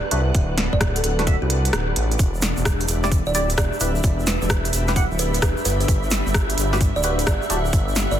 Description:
UK garage, two-step garage; 130 BPM; 4/4; swing 66% on 16ths; E minor; A4 = 440 Hz
kalimba; melody; 0.0-8.2 s; F#4 to E5; -29 LUFS; right 4 dB; dub echo
soft string machine; sustained chords; 0.0-8.2 s; B4 to E5; -33 LUFS; right 1 dB; phaser, ensemble chorus, sidechain pumping
ethereal airy pad; texture; 0.0-8.2 s; D4 to B5; -30 LUFS; left 3 dB; ensemble chorus, built-in reverb, sidechain pumping
percussive organ stab; stabs; 0.1-7.6 s; D4 to F#5; -28 LUFS; equal; analog chorus, dub echo
dark detuned saw bass; bass; 0.1-8.2 s; D1 to C2; -23 LUFS; equal
garage drum kit; drums; 0.1-8.1 s; hi-hat, rim click, snare drum; -25 LUFS; equal; soft clipping on snare
electronic kick drum; drums; 0.3-7.9 s; -22 LUFS; equal
egg shaker; percussion; 2.2-8.2 s; -31 LUFS; right 4 dB
light reverb; dense, heavily limited modern master; -18 LUFS; side -10 dB against mid
0.0-8.2 A section
kick drops out 1.7-2.2
0.0 D7; 2.2 Em7
| 0.35 0.81 1.27 1.73 | 2.19 2.65 3.12 3.58 | 4.04 4.50 4.96 5.42 | 5.88 6.35 6.81 7.27 | 7.73 8.19

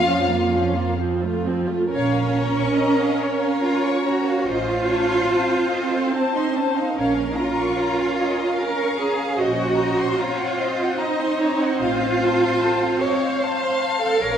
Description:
classical, slow romantic movement for string orchestra; 73 BPM; 3/4; uneven beats, rubato; Bb minor; A4 = 444 Hz
rich chamber violin section; melody; 0.0-14.4 s; A4 to F5; -29 LUFS; left 5 dB
warm symphonic violin section; second line; 0.0-14.4 s; F4 to Db6; -28 LUFS; left 3 dB
warm symphonic viola section; accompaniment; 0.0-14.4 s; F3 to C5; -24 LUFS; right 2 dB
rich symphonic cello section; bass; 0.0-14.4 s; F3 to Db5; -22 LUFS; right 2 dB
warm symphonic double bass section; bass; 0.0-14.4 s; A1 to F2; -29 LUFS; right 3 dB
moderate concert hall reverb, RT60 2.0 s; -19 LUFS; side -8 dB against mid
0.0-1.9 A section; 1.9-14.4 B section
0.0 Bbm/F; 1.0 F; 1.9 Bbm; 4.5 F7/A; 7.0 Bbm; 9.4 Cm7b5/Bb; 11.8 F/A
0.06 0.99 | 1.91 2.78 3.64 | 4.46 5.30 6.13 | 6.97 7.78 8.59 | 9.39 10.20 11.01 | 11.81 12.61 13.41 | 14.22

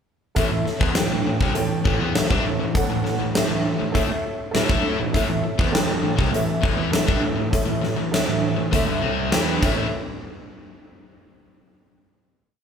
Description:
classic rock; 100 BPM; 4/4; straight; A mixolydian; A4 = 440 Hz
honky-tonk upright piano; accompaniment; 0.3-9.9 s; A4 to G5; -27 LUFS; equal
distorted electric guitar; riff; 0.4-9.9 s; G2 to A4; -27 LUFS; left 6 dB; distortion
sludgy distorted guitar; riff; 0.4-9.9 s; G2 to A4; -28 LUFS; right 6 dB; overdrive
fuzz picked electric bass; bass; 0.4-9.9 s; G1 to A2; -28 LUFS; right 1 dB; overdrive
huge arena drum kit; drums; 0.4-9.8 s; crash cymbal, hi-hat, kick drum, snare drum; -23 LUFS; equal
moderate large studio reverb, RT60 0.9 s; band playing live in one room; -19 LUFS; side -7 dB against mid
0.4-9.9 riff; 9.9-12.3 final hit
honky-tonk piano fill 8.7-9.9
0.4 A; 9.9 N.C.
| 0.37 0.96 1.56 2.15 | 2.75 3.35 3.94 4.54 | 5.14 5.74 6.33 6.93 | 7.53 8.13 8.73 9.32

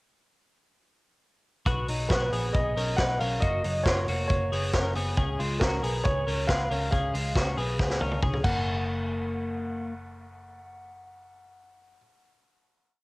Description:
jangly indie pop; 138 BPM; 4/4; straight; F# major; A4 = 437 Hz
twelve-string electric guitar; arpeggios; 1.7-9.9 s; F#3 to B4; -32 LUFS; left 2 dB; cassette tape, tape echo
vintage muted picked electric bass; bass; 1.7-12.0 s; E#1 to C#2; -31 LUFS; equal
vintage drum kit; drums; 1.7-8.5 s; crash cymbal, hi-hat, kick drum, snare drum, toms; -28 LUFS; equal; cassette tape
warm upright piano; melody; 2.1-12.0 s; A#4 to F#5; -32 LUFS; equal; cassette tape, tape echo
little or no reverb; home recording on cassette; -25 LUFS; side -23 dB against mid
1.7-8.7 bridge; 8.7-12.1 final hit
drum fill 7.8-8.7
1.7 B; 3.4 F#; 5.2 C#; 8.4 F#
| 1.67 2.11 2.55 2.99 | 3.43 3.87 4.30 4.74 | 5.18 5.62 6.05 6.49 | 6.92 7.36 7.79 8.23 | 8.66 9.10 9.53 9.96 | 10.40 10.83 11.27 11.71

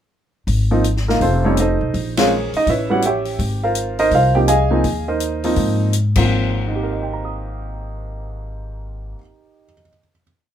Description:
jazz piano trio; 165 BPM; 4/4; swing 64% on 8ths; Ab major; A4 = 440 Hz
upright bass; bass; 0.5-9.1 s; F1 to Ab2; -21 LUFS; left 1 dB
open jazz drum kit; drums; 0.5-6.2 s; crash cymbal, hi-hat, kick drum, ride cymbal, snare drum; -25 LUFS; left 3 dB
warm baby grand piano; melody; 0.7-10.2 s; Ab2 to Eb6; -18 LUFS; right 2 dB
light reverb; minimal, uncompressed stereo recording; -15 LUFS; side -10 dB against mid
0.5-6.3 A section; 6.3-9.2 final chord
band accent 2.1
0.5 Absus2; 1.2 F7; 1.9 Bbm7; 2.7 A9; 3.4 Ab69
| 0.47 0.84 1.21 1.57 | 1.94 2.30 2.67 3.03 | 3.40 3.76 4.12 4.49 | 4.85 5.21 5.58 5.94 | 6.30 6.67 7.03 7.39 | 7.76 8.12 8.48 8.85

